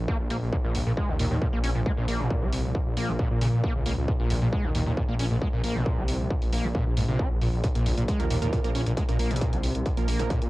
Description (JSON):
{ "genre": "driving peak-time techno", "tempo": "135 BPM", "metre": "4/4", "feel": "straight", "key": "Bb minor", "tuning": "A4 = 439 Hz", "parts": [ { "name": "detuned saw bass", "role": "bass", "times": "0.0-10.5 s", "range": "Bb1 to Bb2", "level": "-28 LUFS", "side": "equal", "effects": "sidechain pumping" }, { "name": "metallic inharmonic drone", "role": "drone", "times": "0.0-10.5 s", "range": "Bb2 to F3", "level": "-36 LUFS", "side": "equal", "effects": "none" }, { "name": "screaming distorted acid line", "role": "riff", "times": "0.1-10.4 s", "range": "Bb1 to Db4", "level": "-30 LUFS", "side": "equal", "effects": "distortion, wide subtle chorus, sidechain pumping, analog delay" }, { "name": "electronic kick drum", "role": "drums", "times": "0.1-10.4 s", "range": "none", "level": "-28 LUFS", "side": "equal", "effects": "distortion, cassette tape" }, { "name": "electronic hi-hat", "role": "drums", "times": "0.3-10.5 s", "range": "none", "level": "-38 LUFS", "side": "equal", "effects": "sidechain pumping on hats, cassette tape" }, { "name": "supersaw stab", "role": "stabs", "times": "8.2-10.3 s", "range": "F3 to Bb4", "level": "-34 LUFS", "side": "right 7 dB", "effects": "cassette tape, sidechain pumping, analog delay" } ], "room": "digital ambience", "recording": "home recording on cassette", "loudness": "-24 LUFS", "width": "side -18 dB against mid", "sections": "0.0-10.5 A section", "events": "none", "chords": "0.0 Bb5", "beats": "0.08 | 0.53 0.97 1.42 1.86 | 2.30 2.75 3.19 3.64 | 4.08 4.53 4.97 5.42 | 5.86 6.30 6.75 7.19 | 7.64 8.08 8.53 8.97 | 9.41 9.86 10.30" }